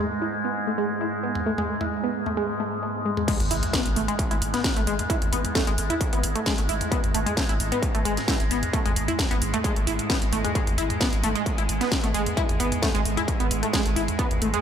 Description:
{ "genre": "driving peak-time techno", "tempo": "132 BPM", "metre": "4/4", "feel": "straight", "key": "G# phrygian", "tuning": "A4 = 440 Hz", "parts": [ { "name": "tight sequenced synth", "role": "riff", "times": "0.0-14.6 s", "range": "G#3 to E4", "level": "-27 LUFS", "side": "equal", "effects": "chorus, tube saturation, sidechain pumping, analog delay" }, { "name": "overtone-sweeping drone", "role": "drone", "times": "0.0-14.6 s", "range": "G#2 to G#3", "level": "-30 LUFS", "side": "right 1 dB", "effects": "chorus, built-in reverb, sidechain pumping" }, { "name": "techno drum kit", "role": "drums", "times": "1.4-14.6 s", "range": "crash cymbal, hi-hat, snare drum, toms", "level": "-29 LUFS", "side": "equal", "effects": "overdrive, sidechain pumping on toms, sidechain pumping on hats, sidechain pumping on cymbals" }, { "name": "electronic kick drum", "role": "drums", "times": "3.3-14.3 s", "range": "none", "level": "-26 LUFS", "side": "equal", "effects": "distortion, overdrive" }, { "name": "impact", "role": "sound effects", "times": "3.3-5.1 s", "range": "none", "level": "-39 LUFS", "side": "equal", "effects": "none" }, { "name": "saturated sub bass", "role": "bass", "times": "3.4-14.5 s", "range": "G#1", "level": "-30 LUFS", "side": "equal", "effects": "overdrive, sidechain pumping, low-pass filter" } ], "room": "moderate cathedral reverb, RT60 5.3 s", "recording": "dreamy mix soaked in reverb", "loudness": "-22 LUFS", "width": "side -8 dB against mid", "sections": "0.0-3.3 A section; 3.3-14.6 B section", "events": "drop 3.3-14.6; impact 3.3-5.1", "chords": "none", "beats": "0.10 0.55 1.01 | 1.46 1.92 2.37 2.83 | 3.28 3.73 4.19 4.64 | 5.10 5.55 6.01 6.46 | 6.92 7.37 7.83 8.28 | 8.73 9.19 9.64 10.10 | 10.55 11.01 11.46 11.92 | 12.37 12.82 13.28 13.73 | 14.19" }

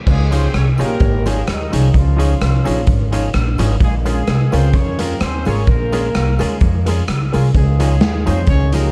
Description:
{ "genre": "ska", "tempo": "128 BPM", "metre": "4/4", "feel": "swing 54% on 8ths", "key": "unclear", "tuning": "A4 = 440 Hz", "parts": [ { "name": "clear horn section", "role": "melody", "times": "0.1-8.9 s", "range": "Eb3 to Db5", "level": "-26 LUFS", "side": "equal", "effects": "tape echo" }, { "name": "upright bass", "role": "bass", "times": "0.1-8.9 s", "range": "Ab1 to F2", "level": "-18 LUFS", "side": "equal", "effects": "none" }, { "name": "raw garage drum kit", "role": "drums", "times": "0.1-8.8 s", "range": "crash cymbal, hi-hat, kick drum, rim click, snare drum", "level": "-21 LUFS", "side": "equal", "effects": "none" }, { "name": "semi-hollow electric guitar", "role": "accompaniment", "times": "0.3-8.9 s", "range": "F3 to Ab4", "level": "-29 LUFS", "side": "equal", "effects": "tape echo" }, { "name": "warm upright piano", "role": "stabs", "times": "0.3-8.8 s", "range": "Db4 to Db5", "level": "-28 LUFS", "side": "equal", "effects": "tape echo" }, { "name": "tambourine", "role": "percussion", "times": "0.3-8.8 s", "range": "none", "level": "-45 LUFS", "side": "equal", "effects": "none" } ], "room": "light reverb", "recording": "dark, warm production", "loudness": "-16 LUFS", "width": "mono", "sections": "0.1-8.9 A section", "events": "none", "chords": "0.1 Dbadd9", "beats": "| 0.07 0.54 1.01 1.47 | 1.94 2.41 2.88 3.35 | 3.81 4.28 4.75 5.21 | 5.68 6.15 6.61 7.08 | 7.54 8.01 8.48" }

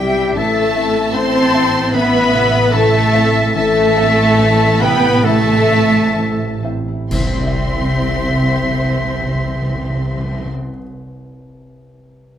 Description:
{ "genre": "cinematic, emotional film score for orchestra", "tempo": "62-79 BPM", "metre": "4/4", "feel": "rubato", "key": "C major", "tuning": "A4 = 440 Hz", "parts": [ { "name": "warm studio violin section", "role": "melody", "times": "0.0-10.5 s", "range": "G5 to C6", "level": "-23 LUFS", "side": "left 3 dB", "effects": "none" }, { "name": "dark studio violin section", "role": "second line", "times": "0.0-10.5 s", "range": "C5 to A5", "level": "-24 LUFS", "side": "right 2 dB", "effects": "none" }, { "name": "silver concert flute", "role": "second line", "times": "0.0-10.5 s", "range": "E5 to A5", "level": "-21 LUFS", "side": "left 1 dB", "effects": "none" }, { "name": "warm clarinet", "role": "second line", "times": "0.0-10.5 s", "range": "G4 to C5", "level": "-24 LUFS", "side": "left 1 dB", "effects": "none" }, { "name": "felt-muted upright piano", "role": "accompaniment", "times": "0.0-12.4 s", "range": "A1 to E5", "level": "-24 LUFS", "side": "left 2 dB", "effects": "none" }, { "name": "warm studio viola section", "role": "accompaniment", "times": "0.0-10.5 s", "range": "C4 to C5", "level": "-22 LUFS", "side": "left 2 dB", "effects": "none" }, { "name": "warm French horn section", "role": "sustained chords", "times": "0.0-10.5 s", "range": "G3 to C4", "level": "-22 LUFS", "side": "left 3 dB", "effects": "none" }, { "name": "concert harp", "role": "arpeggios", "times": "0.0-11.0 s", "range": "A2 to E6", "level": "-28 LUFS", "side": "left 7 dB", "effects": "none" }, { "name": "rich studio cello section", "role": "bass", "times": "0.0-10.5 s", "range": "G3 to C4", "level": "-20 LUFS", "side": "right 3 dB", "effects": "none" }, { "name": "warm studio double bass section", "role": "bass", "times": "0.0-10.5 s", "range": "A1 to C2", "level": "-21 LUFS", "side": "right 3 dB", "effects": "none" }, { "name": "clash cymbals and concert bass drum", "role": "percussion", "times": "7.1-9.0 s", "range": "none", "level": "-26 LUFS", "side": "equal", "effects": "none" }, { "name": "timpani", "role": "percussion", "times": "7.1-10.5 s", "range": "C3", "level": "-21 LUFS", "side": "equal", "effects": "none" } ], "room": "wet recital hall reverb, RT60 1.4 s", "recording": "none", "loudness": "-12 LUFS", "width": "side -10 dB against mid", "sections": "0.0-7.1 A section; 7.1-10.9 B section", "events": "slowing down 0.0-7.1; band accent 7.1-8.1", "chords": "0.4 Amadd9; 7.1 Cadd9", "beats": "| 0.37 1.15 1.94 2.73 | 3.56 4.39 5.25 6.16 | 7.11 8.06 8.99 9.93" }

